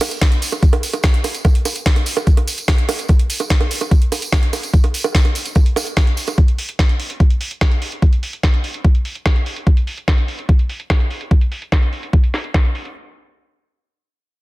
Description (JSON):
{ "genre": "trance", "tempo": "146 BPM", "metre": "4/4", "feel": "straight", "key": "none", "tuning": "none", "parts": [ { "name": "garage drum kit", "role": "drums", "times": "0.0-12.9 s", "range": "bongos, hi-hat, snare drum", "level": "-22 LUFS", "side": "right 2 dB", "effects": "overdrive, low-pass filter on hats, low-pass filter on snare, low-pass filter on cymbals, low-pass filter on perc" }, { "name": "tambourine", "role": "percussion", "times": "0.0-6.4 s", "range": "none", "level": "-27 LUFS", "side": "right 2 dB", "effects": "none" }, { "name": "electronic kick drum", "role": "drums", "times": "0.2-12.6 s", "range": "none", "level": "-13 LUFS", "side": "equal", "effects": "overdrive" } ], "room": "little or no reverb", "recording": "dense, heavily limited modern master", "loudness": "-14 LUFS", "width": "side -19 dB against mid", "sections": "0.0-13.0 A section", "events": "none", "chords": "none", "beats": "0.21 0.63 1.04 | 1.45 1.86 2.27 2.68 | 3.09 3.50 3.91 4.32 | 4.74 5.15 5.56 5.97 | 6.38 6.79 7.20 7.61 | 8.02 8.43 8.85 9.26 | 9.67 10.08 10.49 10.90 | 11.31 11.72 12.13 12.54" }